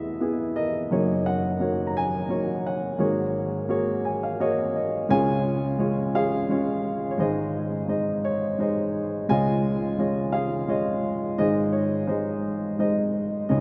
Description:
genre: acoustic folk-pop ballad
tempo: 86 BPM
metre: 3/4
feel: straight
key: Db major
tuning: A4 = 436 Hz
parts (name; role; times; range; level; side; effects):
- dark upright piano; solo; 0.0-13.6 s; Gb1 to Bb5; -25 LUFS; equal; none
room: wet cathedral reverb, RT60 6.1 s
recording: in a vast, echoing space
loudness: -25 LUFS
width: mono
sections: 0.0-5.1 A section; 5.1-13.6 B section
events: upright piano fill 3.7-5.1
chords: 0.0 Emaj7; 0.9 Gb6; 3.0 Ab9sus4; 5.1 Db; 7.2 Ab; 9.3 Dbadd9; 11.4 Ab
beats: 0.20 | 0.90 1.60 2.29 | 2.99 3.69 4.39 | 5.10 5.80 6.50 | 7.20 7.90 8.60 | 9.29 9.99 10.69 | 11.39 12.09 12.79 | 13.49

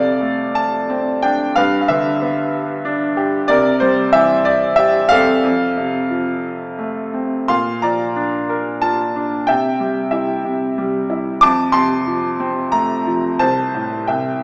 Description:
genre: classical, lyrical solo piano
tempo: 91 BPM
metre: 3/4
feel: uneven beats, rubato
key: F major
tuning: A4 = 440 Hz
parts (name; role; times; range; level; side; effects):
- bright baby grand piano; solo; 0.0-14.4 s; C2 to D6; -18 LUFS; equal; none
room: wet recital hall reverb, RT60 1.6 s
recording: recorded in a church or concert hall, small speaker sound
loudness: -18 LUFS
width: mono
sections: 0.0-7.5 A section; 7.5-14.4 B section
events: none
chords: 0.0 F6; 1.6 G; 3.5 C7; 5.4 F; 7.5 Bb; 9.5 C; 11.4 F; 13.4 Am/C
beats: 0.21 0.89 | 1.56 2.21 2.85 | 3.49 4.14 4.79 | 5.44 6.11 6.79 | 7.49 8.17 8.83 | 9.49 10.13 10.78 | 11.42 12.07 12.72 | 13.39 14.07

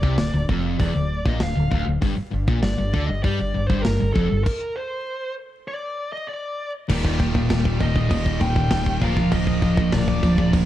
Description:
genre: heavy metal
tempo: 98 BPM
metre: 4/4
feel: straight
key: unclear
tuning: A4 = 438 Hz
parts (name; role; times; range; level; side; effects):
- bluesy overdriven lead guitar; melody; 0.0-10.5 s; A4 to G5; -29 LUFS; left 1 dB; distortion
- distorted electric guitar; riff; 0.0-10.7 s; D2 to Bb3; -25 LUFS; left 4 dB; overdrive
- sludgy distorted guitar; riff; 0.0-10.7 s; D2 to Bb3; -26 LUFS; right 5 dB; overdrive
- woody fretless electric bass; bass; 0.0-10.7 s; D1 to G2; -24 LUFS; equal; wide subtle chorus
- tight metal drum kit; drums; 0.0-10.7 s; crash cymbal, hi-hat, kick drum, snare drum; -24 LUFS; equal; none
- high-gain distorted guitar; riff; 6.9-10.7 s; Eb2 to Bb4; -27 LUFS; equal; distortion
room: little or no reverb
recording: vinyl crackle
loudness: -19 LUFS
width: side -13 dB against mid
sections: 0.0-6.9 A section; 6.9-10.7 B section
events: stop 4.5-6.9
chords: 0.0 Dm; 2.0 G5; 6.9 Eb; 9.0 Bb/D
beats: 0.19 0.80 1.41 | 2.02 2.63 3.24 3.85 | 4.46 5.07 5.68 6.29 | 6.90 7.51 8.11 8.72 | 9.32 9.93 10.54

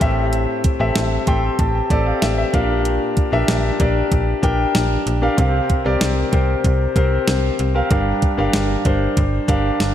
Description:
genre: 1980s-style pop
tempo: 95 BPM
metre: 4/4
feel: straight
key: G dorian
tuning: A4 = 442 Hz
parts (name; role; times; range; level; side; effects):
- clear grand piano; accompaniment; 0.0-9.9 s; G2 to C6; -19 LUFS; left 2 dB; none
- slap-like FM bass; bass; 0.0-9.9 s; G1 to C2; -20 LUFS; equal; none
- clean 12-bit digital drum machine; drums; 0.0-9.9 s; hi-hat, kick drum, snare drum; -20 LUFS; equal; none
room: moderate lush hall reverb, RT60 2.0 s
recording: dreamy mix soaked in reverb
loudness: -16 LUFS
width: side -10 dB against mid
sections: 0.0-9.9 A section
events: grand piano fill 1.0-2.9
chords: 0.0 Am7; 2.5 Gm7/Bb; 5.4 C7sus4; 7.9 Gm7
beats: | 0.33 0.96 1.59 2.22 | 2.85 3.49 4.12 4.75 | 5.38 6.01 6.64 7.28 | 7.91 8.54 9.17 9.80

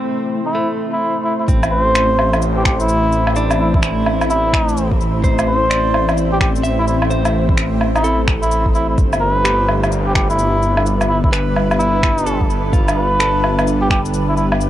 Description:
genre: future garage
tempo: 128 BPM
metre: 4/4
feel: swing 63% on 16ths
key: A minor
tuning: A4 = 440 Hz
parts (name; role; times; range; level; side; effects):
- direct-recorded clean electric guitar; accompaniment; 0.0-14.5 s; A3 to E5; -26 LUFS; right 2 dB; sidechain pumping, analog delay
- granular cloud pad; sustained chords; 0.0-14.7 s; G3 to C5; -23 LUFS; equal; built-in reverb, sidechain pumping
- trumpet with cup mute; melody; 0.5-14.5 s; E4 to C5; -19 LUFS; equal; vintage 12-bit sampler grit, tape echo
- swelling detuned saw bass; bass; 1.5-14.7 s; G1 to A1; -18 LUFS; equal; none
- electronic kick drum; drums; 1.5-14.0 s; none; -17 LUFS; equal; overdrive, vintage 12-bit sampler grit
- electronic shaker, woodblock and finger snaps; drums; 1.5-14.7 s; none; -20 LUFS; equal; overdrive, vintage 12-bit sampler grit
room: light reverb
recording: cassette tape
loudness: -13 LUFS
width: side -12 dB against mid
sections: 0.0-1.5 A section; 1.5-14.7 B section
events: filter sweep on clean electric guitar 0.0-1.5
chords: 0.0 Am; 9.0 G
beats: 0.08 0.55 1.01 | 1.48 1.95 2.42 2.89 | 3.36 3.83 4.30 4.76 | 5.23 5.70 6.17 6.64 | 7.11 7.58 8.05 8.52 | 8.98 9.45 9.92 10.39 | 10.86 11.33 11.80 12.27 | 12.73 13.20 13.67 14.14 | 14.61

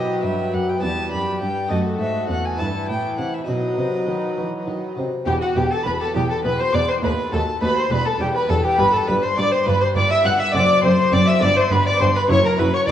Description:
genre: classical, baroque-style concerto movement with solo episodes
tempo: 68 BPM (dotted quarters)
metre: 6/8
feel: straight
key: E minor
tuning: A4 = 439 Hz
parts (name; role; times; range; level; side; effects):
- rich chamber violin section; melody; 0.0-12.9 s; A4 to F#6; -25 LUFS; left 1 dB; none
- warm violin; melody; 0.0-12.9 s; F#4 to B5; -23 LUFS; left 1 dB; none
- warm chamber violin section; second line; 0.0-12.9 s; D#4 to F#5; -25 LUFS; left 2 dB; none
- dark chamber viola section; accompaniment; 0.0-12.9 s; E3 to E4; -28 LUFS; equal; none
- harpsichord; accompaniment; 0.0-12.9 s; D#2 to C5; -27 LUFS; left 1 dB; none
- warm chamber cello section; bass; 0.0-12.9 s; D#2 to E3; -25 LUFS; right 2 dB; none
- rich chamber double bass section; bass; 5.3-12.9 s; E1 to D#2; -26 LUFS; right 2 dB; none
room: moderate concert hall reverb, RT60 1.7 s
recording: worn, warbling old tape, cassette tape, warbly pitch drift, small room ambience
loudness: -17 LUFS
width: side -10 dB against mid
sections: 0.0-5.3 A section; 5.3-12.9 B section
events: none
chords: 0.0 B5; 0.8 Em; 1.7 D#dim/F#; 2.6 Em/G; 3.5 B; 5.3 Em; 7.0 B7b9/D#; 7.9 Em; 8.8 G; 10.5 D9/F#; 11.4 G; 12.3 F#7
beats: 0.83 | 1.71 2.60 | 3.48 4.38 | 5.27 6.15 | 7.03 7.91 | 8.79 9.66 | 10.54 11.42 | 12.30

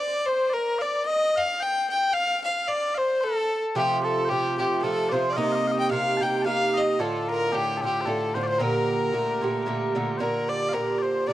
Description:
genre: celtic folk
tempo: 112 BPM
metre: 3/4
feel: swing 54% on 8ths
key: G minor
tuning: A4 = 440 Hz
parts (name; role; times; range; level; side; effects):
- rich fiddle; melody; 0.0-11.3 s; G4 to G5; -25 LUFS; left 1 dB; tape echo
- mellow small bagpipes; second line; 0.0-11.3 s; G4 to A5; -30 LUFS; left 4 dB; none
- Irish bouzouki; accompaniment; 3.8-11.3 s; A2 to G4; -26 LUFS; right 3 dB; none
room: little or no reverb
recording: dry, close 1970s-style studio recording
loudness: -22 LUFS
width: side -14 dB against mid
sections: 0.0-10.2 A section; 10.2-11.3 B section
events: none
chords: 0.0 N.C.; 3.8 F; 5.4 Cm7; 7.0 Dm; 8.6 Gmadd9; 10.2 Gm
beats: | 0.52 1.06 1.60 | 2.14 2.68 3.22 | 3.75 4.29 4.83 | 5.37 5.91 6.44 | 6.98 7.52 8.05 | 8.59 9.13 9.67 | 10.20 10.74 11.28

